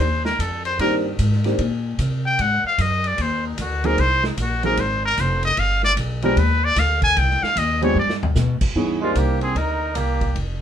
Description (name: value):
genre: jazz, small-group swing and bop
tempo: 150 BPM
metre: 4/4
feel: swing 64% on 8ths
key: C minor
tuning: A4 = 442 Hz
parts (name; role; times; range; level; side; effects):
- trumpet with straight mute; melody; 0.0-10.4 s; Eb4 to Ab5; -21 LUFS; left 1 dB; none
- upright bass; bass; 0.0-10.6 s; F1 to C3; -22 LUFS; equal; none
- vintage drum kit; drums; 0.3-10.5 s; crash cymbal, hi-hat, kick drum, ride cymbal, snare drum, toms; -28 LUFS; equal; none
- dark baby grand piano; accompaniment; 0.8-9.9 s; Eb3 to Ab4; -22 LUFS; equal; none
- breathy trumpet; second line; 9.0-10.4 s; Ab3 to Eb4; -26 LUFS; right 5 dB; none
room: moderate club reverb, RT60 0.5 s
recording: minimal, uncompressed stereo recording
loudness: -18 LUFS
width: side -9 dB against mid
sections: 0.0-8.8 A section; 8.8-10.6 B section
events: muted trumpet solo 0.0-8.8; drum fill 8.0-8.4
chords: 0.0 Cm7; 2.4 Ab7; 5.6 G7; 7.2 Cm; 8.0 G; 8.8 Cm7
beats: 0.39 | 0.79 1.19 1.59 1.99 | 2.39 2.79 3.18 3.58 | 3.98 4.38 4.78 5.18 | 5.57 5.97 6.37 6.77 | 7.17 7.57 7.96 8.36 | 8.76 9.16 9.56 9.96 | 10.36